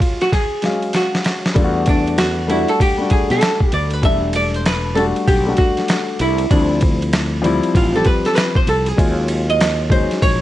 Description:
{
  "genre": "hip hop, jazz-hop",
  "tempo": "97 BPM",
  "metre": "4/4",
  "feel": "swing 64% on 16ths",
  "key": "unclear",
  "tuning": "A4 = 439 Hz",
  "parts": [
    { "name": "archtop guitar, miked and amplified", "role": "melody", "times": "0.0-10.4 s", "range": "D4 to E5", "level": "-19 LUFS", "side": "right 1 dB", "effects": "none" },
    { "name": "dark grand piano", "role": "accompaniment", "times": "0.0-10.3 s", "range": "F3 to E#5", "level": "-21 LUFS", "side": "left 3 dB", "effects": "none" },
    { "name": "boom bap sampler-style drum kit", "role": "drums", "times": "0.0-10.4 s", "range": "hi-hat, kick drum, ride cymbal, snare drum", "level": "-18 LUFS", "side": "equal", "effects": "none" },
    { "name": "fretless electric bass", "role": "bass", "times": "1.6-10.4 s", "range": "E1 to B2", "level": "-21 LUFS", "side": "equal", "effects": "none" }
  ],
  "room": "light reverb",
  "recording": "tape saturation, vinyl crackle, nothing above 11.0 kHz",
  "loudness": "-14 LUFS",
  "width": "side -14 dB against mid",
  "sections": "0.0-1.6 A section; 1.6-10.4 B section",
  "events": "break 0.0-1.6; drum fill 0.3-1.6; hollow-body jazz guitar solo 1.6-10.4",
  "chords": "0.0 C#add11/F#; 1.6 Em11; 6.5 Dm11; 9.0 D#m11"
}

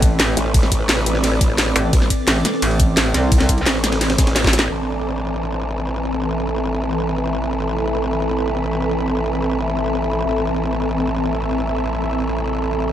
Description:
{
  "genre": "dark technical drum and bass",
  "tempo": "173 BPM",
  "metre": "4/4",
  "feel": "straight",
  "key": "A minor",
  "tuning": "A4 = 439 Hz",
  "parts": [
    { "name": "swarming drone", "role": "sustained chords", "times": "0.0-12.9 s", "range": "E3 to E5", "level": "-26 LUFS", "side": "equal", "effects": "built-in reverb, sidechain pumping" },
    { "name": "metallic wobble bass", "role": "bass", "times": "0.0-3.7 s", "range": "A1 to C2", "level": "-18 LUFS", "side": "equal", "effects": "chorus" },
    { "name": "breakbeat sampler-style drum kit", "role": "drums", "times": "0.0-4.7 s", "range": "ride cymbal, snare drum", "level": "-26 LUFS", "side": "equal", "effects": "none" },
    { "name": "drum and bass drum kit", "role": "drums", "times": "0.0-4.7 s", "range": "hi-hat, ride cymbal, snare drum", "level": "-20 LUFS", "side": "equal", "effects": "none" },
    { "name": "electronic kick drum", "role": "drums", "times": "0.0-4.5 s", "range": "none", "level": "-16 LUFS", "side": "equal", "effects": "none" },
    { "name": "granular cloud pad", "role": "texture", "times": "0.0-12.9 s", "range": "C4 to D6", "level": "-24 LUFS", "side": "equal", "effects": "built-in reverb, sidechain pumping" },
    { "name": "growl bass", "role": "bass", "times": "0.4-12.9 s", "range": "A1", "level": "-22 LUFS", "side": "equal", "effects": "chorus, tube saturation" }
  ],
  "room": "moderate lush hall reverb, RT60 2.4 s",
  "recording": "none",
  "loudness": "-16 LUFS",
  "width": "side -11 dB against mid",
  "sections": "0.0-4.7 A section; 4.7-12.9 B section",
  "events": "drop 0.0-4.7; drum fill 4.4-4.7",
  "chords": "0.0 Amadd9"
}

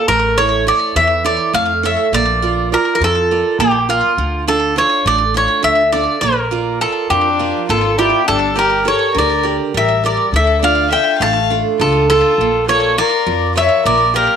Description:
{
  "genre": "greek folk, Greek bouzouki band",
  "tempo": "205 BPM (eighths)",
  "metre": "7/8",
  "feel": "straight",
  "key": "unclear",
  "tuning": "A4 = 440 Hz",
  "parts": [
    { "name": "Greek bouzouki", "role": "melody", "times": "0.0-14.4 s", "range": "F4 to A5", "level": "-14 LUFS", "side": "equal", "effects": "slapback echo" },
    { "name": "picked steel-string acoustic guitar", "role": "accompaniment", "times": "0.0-14.4 s", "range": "D3 to D5", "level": "-20 LUFS", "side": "right 11 dB", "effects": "none" },
    { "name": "upright bass", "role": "bass", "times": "0.1-14.3 s", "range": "G1 to F2", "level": "-21 LUFS", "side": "equal", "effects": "none" },
    { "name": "warm violin", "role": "second line", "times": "7.1-14.4 s", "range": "D4 to F5", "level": "-18 LUFS", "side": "left 12 dB", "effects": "none" }
  ],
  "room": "moderate spring reverb, RT60 1.2 s, small room ambience",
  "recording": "1960s-style stereo with parts hard left and right",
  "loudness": "-12 LUFS",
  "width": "side -8 dB against mid",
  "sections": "0.1-14.4 A section",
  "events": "none",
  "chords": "0.1 A; 2.1 Bb; 4.2 Dm; 6.2 Bb; 8.3 Gm; 10.3 Dm; 12.4 Bb"
}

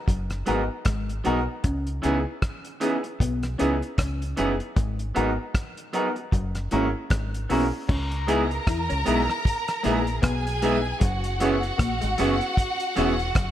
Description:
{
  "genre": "lovers rock reggae",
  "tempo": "77 BPM",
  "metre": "4/4",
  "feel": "swing 59% on 16ths",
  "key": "C# dorian",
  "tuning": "A4 = 440 Hz",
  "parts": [
    { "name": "electric guitar through a small old amp", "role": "riff", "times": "0.1-13.5 s", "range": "E3 to E4", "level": "-33 LUFS", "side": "left 4 dB", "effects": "analog chorus" },
    { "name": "deep dub fingered electric bass", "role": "bass", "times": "0.1-13.5 s", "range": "E1 to E2", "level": "-28 LUFS", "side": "equal", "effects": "none" },
    { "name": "cloth-damped thuddy drum kit", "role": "drums", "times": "0.1-13.5 s", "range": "crash cymbal, hi-hat, kick drum, rim click", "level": "-26 LUFS", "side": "equal", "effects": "none" },
    { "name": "bright grand piano", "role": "accompaniment", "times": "0.5-13.1 s", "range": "B3 to A#4", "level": "-29 LUFS", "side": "left 1 dB", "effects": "none" },
    { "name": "electric guitar through a small old amp", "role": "stabs", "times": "0.5-13.1 s", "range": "E3 to G#4", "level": "-28 LUFS", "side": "right 3 dB", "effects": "none" },
    { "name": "warm studio violin section", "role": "second line", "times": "7.9-13.5 s", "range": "F#4 to A#5", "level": "-28 LUFS", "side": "equal", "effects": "none" }
  ],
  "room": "light reverb, small room ambience",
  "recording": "none",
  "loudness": "-22 LUFS",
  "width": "side -11 dB against mid",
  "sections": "0.0-7.9 A section; 7.9-13.5 B section",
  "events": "none",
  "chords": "0.0 G#m7; 1.6 C#m7; 4.8 G#m7; 6.3 F#7; 7.9 C#m7; 11.0 F#7sus4"
}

